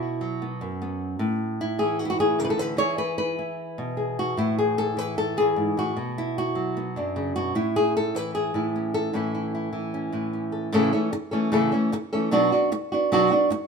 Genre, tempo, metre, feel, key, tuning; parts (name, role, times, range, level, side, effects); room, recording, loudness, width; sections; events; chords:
flamenco; 151 BPM; 4/4; straight; A major; A4 = 440 Hz
flamenco guitar; solo; 0.0-13.5 s; F#2 to C#5; -22 LUFS; equal
wet stone room reverb, RT60 1.1 s; minimal, uncompressed stereo recording; -22 LUFS; side -5 dB against mid
0.0-10.7 A section; 10.7-13.7 B section
0.0 B5; 1.2 A5; 2.8 E; 4.4 A5; 6.0 Bm; 7.6 A; 12.3 Bm